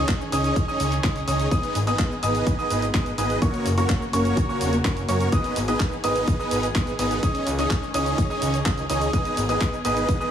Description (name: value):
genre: EDM, festival progressive house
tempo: 126 BPM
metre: 4/4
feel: straight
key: G# minor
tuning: A4 = 440 Hz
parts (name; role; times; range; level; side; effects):
- dark studio string section; sustained chords; 0.0-10.3 s; C#3 to G#4; -31 LUFS; equal; sidechain pumping
- dark grand piano; arpeggios; 0.0-10.3 s; C#6 to D#6; -29 LUFS; equal; sidechain pumping, tape echo
- dense compressed supersaw; riff; 0.0-10.3 s; A#3 to D#5; -26 LUFS; right 1 dB; sidechain pumping, tape echo
- fat analog bass; bass; 0.0-10.0 s; E1 to F#2; -26 LUFS; equal; sidechain pumping
- electronic kick drum; drums; 0.1-10.2 s; none; -24 LUFS; equal; none
- house drum kit; drums; 0.1-10.3 s; handclaps, hi-hat, ride cymbal, shaker; -32 LUFS; right 1 dB; none
room: light reverb, digital ambience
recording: heavily compressed radio sound, multiband compression, small room ambience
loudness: -20 LUFS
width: side -9 dB against mid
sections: 0.0-10.3 A section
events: none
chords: 0.0 C#sus2; 1.5 G#m; 3.4 F#; 5.3 G#m; 7.2 C#sus2; 9.1 G#m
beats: 0.09 0.56 1.04 | 1.51 1.99 2.47 2.94 | 3.42 3.90 4.37 4.85 | 5.32 5.80 6.28 6.75 | 7.23 7.71 8.18 8.66 | 9.13 9.61 10.09